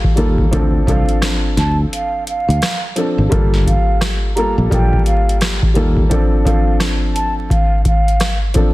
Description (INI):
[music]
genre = hip hop, boom-bap hip-hop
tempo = 86 BPM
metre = 4/4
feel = swing 61% on 16ths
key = G minor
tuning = A4 = 439 Hz
[part]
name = dark upright piano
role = accompaniment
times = 0.0-8.7 s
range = F3 to A4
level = -20 LUFS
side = left 1 dB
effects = high-pass filter, low-pass filter
[part]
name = booming analog drum machine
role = drums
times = 0.0-8.7 s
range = hi-hat, kick drum, rim click, snare drum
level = -15 LUFS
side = equal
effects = none
[part]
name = fingered electric bass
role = bass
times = 0.2-6.0 s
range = G1 to Eb2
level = -16 LUFS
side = equal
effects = none
[part]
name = breathy mellow concert flute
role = melody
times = 0.9-8.4 s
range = F5 to Bb5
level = -22 LUFS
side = right 2 dB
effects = high-pass filter, low-pass filter, ping-pong delay
[sound]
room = little or no reverb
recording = dense, heavily limited modern master, vinyl crackle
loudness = -13 LUFS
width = side -18 dB against mid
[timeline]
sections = 0.0-8.7 A section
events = kick muted 1.9-3.3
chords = 0.0 Gm9; 0.5 Dm7; 3.3 Gm9; 6.1 Dm7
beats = | 0.53 1.23 1.92 2.62 | 3.32 4.02 4.71 5.41 | 6.11 6.81 7.50 8.20